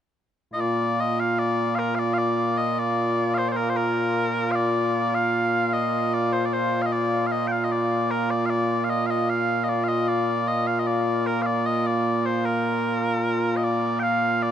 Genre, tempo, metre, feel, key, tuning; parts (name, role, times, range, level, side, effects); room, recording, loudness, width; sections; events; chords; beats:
scottish traditional; 76 BPM; 2/4; straight; Bb major; A4 = 440 Hz
mellow small bagpipes; solo; 0.5-14.5 s; Bb2 to G5; -21 LUFS; equal
moderate huge ambient reverb, RT60 7.4 s; dark, warm production; -21 LUFS; side -9 dB against mid
0.0-1.4 A section; 1.4-14.0 B section
0.61 | 1.40 2.19 | 2.98 3.76 | 4.55 5.34 | 6.13 6.92 | 7.71 8.50 | 9.29 10.08 | 10.87 11.66 | 12.45 13.24 | 14.03